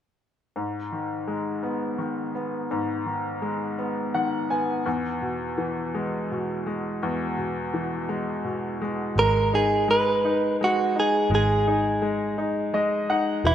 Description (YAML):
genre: pop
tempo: 56 BPM (dotted quarters)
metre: 6/8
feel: straight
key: G# minor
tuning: A4 = 440 Hz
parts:
  - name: bright upright piano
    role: accompaniment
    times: 0.6-13.5 s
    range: E2 to G#5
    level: -26 LUFS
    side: left 2 dB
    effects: none
  - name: direct-recorded clean electric guitar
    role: melody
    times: 9.2-13.5 s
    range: E4 to B4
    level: -22 LUFS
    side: right 2 dB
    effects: none
  - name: vintage muted fingered electric bass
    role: bass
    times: 9.2-13.5 s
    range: E1 to G#1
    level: -27 LUFS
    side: equal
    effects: none
room: wet plate reverb, RT60 3.4 s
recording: rough home demo mix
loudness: -23 LUFS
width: side -10 dB against mid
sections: 0.6-9.2 A section; 9.2-13.5 B section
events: upright piano fill 3.8-4.9, 12.4-13.4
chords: 0.6 G#m; 4.9 E; 9.2 G#5